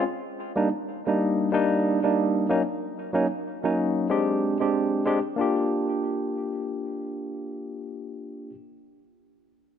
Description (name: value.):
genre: chillout.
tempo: 93 BPM.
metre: 4/4.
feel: swing 57% on 16ths.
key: unclear.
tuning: A4 = 440 Hz.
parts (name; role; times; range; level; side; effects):
barky tine electric piano; accompaniment; 0.0-8.5 s; Gb3 to G4; -24 LUFS; moving between left 4 dB and right 3 dB; overdrive, auto-pan, digital delay.
room: moderate plate reverb, RT60 2.8 s.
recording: none.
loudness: -23 LUFS.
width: side -8 dB against mid.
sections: 0.0-5.4 A section; 5.4-8.0 B section.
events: none.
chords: 0.2 Ebmaj7/G; 2.5 Gb6; 4.1 Abmaj7#11; 5.4 Bb6.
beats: | 0.23 0.88 1.52 2.17 | 2.81 3.46 4.10 4.75 | 5.39 6.04 6.68 7.33.